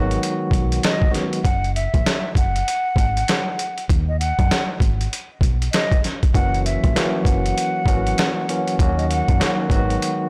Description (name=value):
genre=hip hop, boom-bap hip-hop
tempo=98 BPM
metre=4/4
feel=swing 61% on 16ths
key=G# minor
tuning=A4 = 440 Hz
part: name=tine electric piano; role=accompaniment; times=0.0-1.4, 6.3-10.3 s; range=D#3 to F#4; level=-25 LUFS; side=equal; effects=overdrive, cassette tape, high-pass filter, low-pass filter
part: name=deep dub fingered electric bass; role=bass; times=0.0-10.0 s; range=F#1 to F#2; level=-24 LUFS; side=equal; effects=none
part: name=boom bap sampler-style drum kit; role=drums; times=0.1-10.2 s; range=hi-hat, kick drum, snare drum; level=-22 LUFS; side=equal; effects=none
part: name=breathy mellow silver concert flute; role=melody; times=0.8-9.6 s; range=D#5 to F#5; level=-28 LUFS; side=equal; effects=high-pass filter, low-pass filter, tape echo
room=light reverb, digital ambience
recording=blown-out, overdriven recording, overdrive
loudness=-20 LUFS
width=mono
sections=0.0-10.3 A section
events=none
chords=0.0 G#m7; 1.4 F#7(no3); 3.9 D#m; 4.8 G#m; 6.3 F#7; 8.8 D#m7; 9.7 G#m7